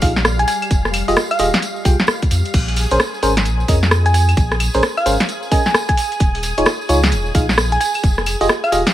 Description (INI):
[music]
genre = UK garage, two-step garage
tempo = 131 BPM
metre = 4/4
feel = swing 63% on 16ths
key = Bb dorian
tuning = A4 = 441 Hz
[part]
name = soft string machine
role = sustained chords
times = 0.0-8.9 s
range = G3 to Ab5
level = -28 LUFS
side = equal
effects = ensemble chorus, sidechain pumping
[part]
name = FM electric piano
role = stabs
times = 0.0-8.8 s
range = Db4 to G5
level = -20 LUFS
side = equal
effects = chorus, ping-pong delay
[part]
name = saturated sub bass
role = bass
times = 0.0-8.8 s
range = Eb1 to F2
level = -18 LUFS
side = equal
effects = tube saturation
[part]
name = electronic kick drum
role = drums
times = 0.0-8.2 s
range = none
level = -16 LUFS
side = equal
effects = none
[part]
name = garage drum kit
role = drums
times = 0.0-8.9 s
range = claves, crash cymbal, hi-hat, rim click, snare drum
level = -19 LUFS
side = equal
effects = none
[part]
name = tambourine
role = percussion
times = 0.0-8.9 s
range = none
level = -29 LUFS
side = right 2 dB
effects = none
[part]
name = thumb-piano-like synth pluck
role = melody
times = 0.4-8.8 s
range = F5 to Ab5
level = -21 LUFS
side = right 1 dB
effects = chorus, ping-pong delay
[sound]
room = light reverb, digital ambience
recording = vinyl crackle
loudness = -14 LUFS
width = side -13 dB against mid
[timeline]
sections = 0.0-8.9 A section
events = none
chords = 0.5 Fm9; 2.5 Bbm9; 6.2 Eb9sus4; 7.8 Fm9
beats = 0.25 | 0.71 1.17 1.62 2.08 | 2.54 3.00 3.46 3.91 | 4.37 4.83 5.29 5.75 | 6.20 6.66 7.12 7.58 | 8.04 8.49